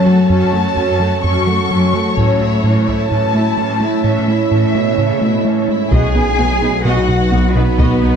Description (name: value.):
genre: cinematic, hybrid orchestral and electronic film score.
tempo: 128 BPM.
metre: 4/4.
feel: straight.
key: unclear.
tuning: A4 = 439 Hz.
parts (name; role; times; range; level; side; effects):
warm symphonic violin section; melody; 0.0-8.1 s; F#4 to C#6; -23 LUFS; left 5 dB; none.
warm symphonic violin section; second line; 0.0-8.2 s; E4 to G#5; -24 LUFS; left 4 dB; none.
rich symphonic viola section; accompaniment; 0.0-8.1 s; E3 to F#4; -23 LUFS; right 1 dB; none.
evolving wavetable pad; sustained chords; 0.0-8.2 s; F#3 to C#5; -17 LUFS; right 1 dB; chorus, built-in reverb.
rich symphonic cello section; bass; 0.0-8.2 s; F#2 to G#4; -19 LUFS; right 2 dB; none.
rubbery square bass; riff; 0.1-8.2 s; F#2 to B3; -19 LUFS; right 2 dB; none.
taiko ensemble; drums; 2.2-3.1, 5.9-8.2 s; none; -19 LUFS; left 1 dB; none.
rich symphonic double bass section; bass; 5.9-8.1 s; B1; -21 LUFS; right 2 dB; none.
wide detuned saw bass; bass; 5.9-8.2 s; B1; -19 LUFS; left 1 dB; chorus.
room: wet scoring stage reverb, RT60 1.6 s.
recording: dark, warm production.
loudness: -12 LUFS.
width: side -7 dB against mid.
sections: 0.0-5.9 A section; 5.9-8.2 B section.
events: none.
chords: 0.0 F#m; 2.2 A; 5.9 B.